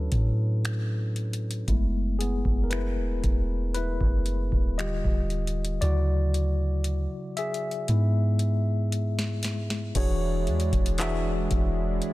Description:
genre	contemporary R&B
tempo	58 BPM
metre	4/4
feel	straight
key	unclear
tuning	A4 = 440 Hz
part	mellow tine electric piano	accompaniment	0.0-12.1 s	C#3 to E5	-31 LUFS	left 2 dB	fast stereo tremolo
part	soft 808-style bass	bass	0.0-12.0 s	D#1 to A2	-26 LUFS	equal	none
part	booming analog drum machine	drums	0.1-12.1 s	crash cymbal, finger snaps, handclaps, hi-hat, kick drum, snare drum	-28 LUFS	equal	none
part	lush unison pad	sustained chords	9.9-12.1 s	G#3 to E4	-35 LUFS	right 4 dB	chorus, sidechain pumping
room	little or no reverb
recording	none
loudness	-24 LUFS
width	side -18 dB against mid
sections	0.0-10.0 A section; 10.0-12.1 B section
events	tine electric piano solo 0.0-10.0; drum fill 5.8-10.0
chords	0.0 Dmaj7; 1.7 F#m11; 4.8 D#maj7; 5.8 Dmaj7; 7.9 E/G#; 10.0 E13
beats	0.64 | 1.68 2.71 3.75 4.78 | 5.82 6.85 7.88 8.92 | 9.95 10.99 12.02

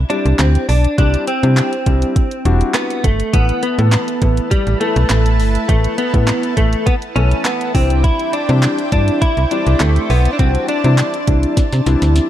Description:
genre	dance-pop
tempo	102 BPM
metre	4/4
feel	straight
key	unclear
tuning	A4 = 440 Hz
part	slap-like FM bass	bass	0.0-12.2 s	E1 to C3	-14 LUFS	equal	sidechain pumping
part	direct-recorded clean electric guitar	melody	0.1-12.3 s	G3 to E4	-19 LUFS	right 1 dB	analog chorus
part	warm baby grand piano	accompaniment	0.1-12.3 s	E3 to A4	-22 LUFS	left 5 dB	sidechain pumping
part	smooth R&B drum kit	drums	0.1-12.3 s	handclaps, hi-hat, kick drum, snare drum	-18 LUFS	equal	none
part	lush unison pad	sustained chords	3.3-12.3 s	E4 to A5	-26 LUFS	equal	chorus, sidechain pumping
room	digital ambience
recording	dark, warm production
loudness	-13 LUFS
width	side -12 dB against mid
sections	0.0-12.3 A section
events	drum fill 11.6-12.3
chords	0.0 Cadd9; 3.3 Asus2; 7.7 Cadd9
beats	0.39 | 0.98 1.57 2.16 2.75 | 3.33 3.92 4.51 5.10 | 5.69 6.28 6.87 7.45 | 8.04 8.63 9.22 9.81 | 10.39 10.98 11.57 12.16

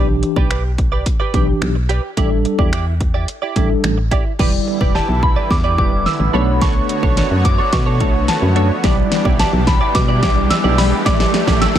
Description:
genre	dance-pop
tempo	108 BPM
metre	4/4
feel	straight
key	unclear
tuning	A4 = 440 Hz
part	mellow tine electric piano	accompaniment	0.0-11.6 s	E3 to D5	-21 LUFS	left 1 dB	medium stereo tremolo, sidechain pumping
part	direct-recorded clean electric guitar	riff	0.0-11.8 s	D4 to D5	-24 LUFS	right 7 dB	analog chorus
part	solid FM bass	bass	0.0-11.8 s	E1 to B2	-18 LUFS	equal	sidechain pumping
part	pop drum kit	drums	0.2-11.8 s	crash cymbal, finger snaps, hi-hat, kick drum, snare drum	-17 LUFS	equal	none
part	supersaw pad	sustained chords	4.4-11.8 s	D3 to C#5	-23 LUFS	equal	sidechain pumping
part	riser	sound effects	7.5-11.8 s	none	-26 LUFS	equal	none
part	soft synth bell	melody	5.0-11.8 s	A5 to E6	-21 LUFS	equal	chorus, tape echo
room	little or no reverb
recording	none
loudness	-13 LUFS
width	side -10 dB against mid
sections	0.0-4.4 A section; 4.4-11.8 B section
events	build-up 4.4-11.8; drum fill 4.4-11.8; riser 7.5-11.8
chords	0.0 Em7/B; 2.2 A7sus4; 4.4 Em7; 6.3 Bm9; 8.8 Em7/B; 11.1 A7sus4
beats	0.51 1.06 1.62 | 2.17 2.73 3.28 3.84 | 4.39 4.95 5.51 6.06 | 6.62 7.17 7.73 8.28 | 8.84 9.39 9.95 10.51 | 11.06 11.62

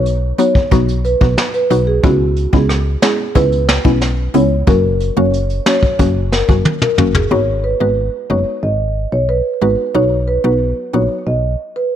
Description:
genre	dancehall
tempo	91 BPM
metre	4/4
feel	straight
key	B major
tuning	A4 = 440 Hz
part	marimba with medium mallets	melody	0.0-11.9 s	F#4 to D#5	-18 LUFS	right 1 dB	tape echo
part	mallet-like synth pluck	accompaniment	0.0-11.2 s	F#3 to F#4	-18 LUFS	left 1 dB	chorus, phaser
part	solid FM bass	bass	0.0-11.6 s	F#1 to C#2	-17 LUFS	equal	none
part	vintage brush drum kit	drums	0.1-7.3 s	hi-hat, kick drum, rim click, snare drum, toms	-16 LUFS	equal	vintage 12-bit sampler grit
room	little or no reverb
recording	none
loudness	-12 LUFS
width	side -10 dB against mid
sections	0.0-7.3 A section; 7.3-12.0 B section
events	drum fill 6.7-7.3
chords	0.0 B; 2.0 C#m7; 4.7 F#; 7.3 G#m7; 9.9 B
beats	0.06 0.72 1.38 | 2.04 2.70 3.35 4.01 | 4.67 5.33 5.99 6.65 | 7.31 7.97 8.63 9.29 | 9.95 10.61 11.27

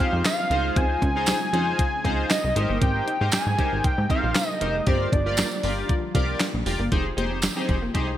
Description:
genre	early-eighties boogie funk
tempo	117 BPM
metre	4/4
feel	straight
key	F minor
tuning	A4 = 441 Hz
part	fat analog lead	melody	0.0-5.6 s	C5 to Ab5	-26 LUFS	equal	digital delay
part	chorused polysynth	accompaniment	0.0-8.1 s	Eb4 to D5	-29 LUFS	left 2 dB	none
part	soft string machine	sustained chords	0.0-8.2 s	C3 to G4	-35 LUFS	equal	phaser, ensemble chorus
part	electric guitar through a small old amp	riff	0.0-8.2 s	G3 to Eb4	-35 LUFS	right 2 dB	lush chorus
part	clean 12-bit digital drum machine	drums	0.0-8.1 s	handclaps, hi-hat, kick drum, snare drum	-25 LUFS	equal	gated reverb
part	plucky analog bass	bass	0.1-8.2 s	F1 to Ab2	-26 LUFS	equal	none
part	tambourine	percussion	0.3-7.6 s	none	-34 LUFS	right 7 dB	none
room	light reverb, digital ambience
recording	bright 1980s-style digital production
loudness	-21 LUFS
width	side -12 dB against mid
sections	0.0-6.9 A section; 6.9-8.2 B section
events	none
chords	0.0 Fm7; 0.5 Dbmaj9; 2.6 Abmaj9; 4.9 Gm7; 6.9 Fm9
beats	0.25 | 0.77 1.28 1.79 2.30 | 2.82 3.33 3.84 4.36 | 4.87 5.38 5.89 6.41 | 6.92 7.43 7.95

